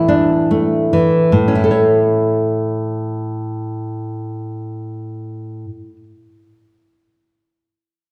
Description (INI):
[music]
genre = romantic piece for solo classical guitar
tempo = 34-42 BPM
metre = 4/4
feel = rubato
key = A major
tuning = A4 = 441 Hz
[part]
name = nylon-string guitar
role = solo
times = 0.0-6.0 s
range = A2 to C#5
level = -18 LUFS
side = equal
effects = none
[sound]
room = wet recital hall reverb, RT60 1.5 s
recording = recorded in a church or concert hall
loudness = -16 LUFS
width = mono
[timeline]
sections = 0.0-1.3 A section; 1.3-7.3 B section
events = slowing down 0.0-1.3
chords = 0.0 Asus4; 1.3 A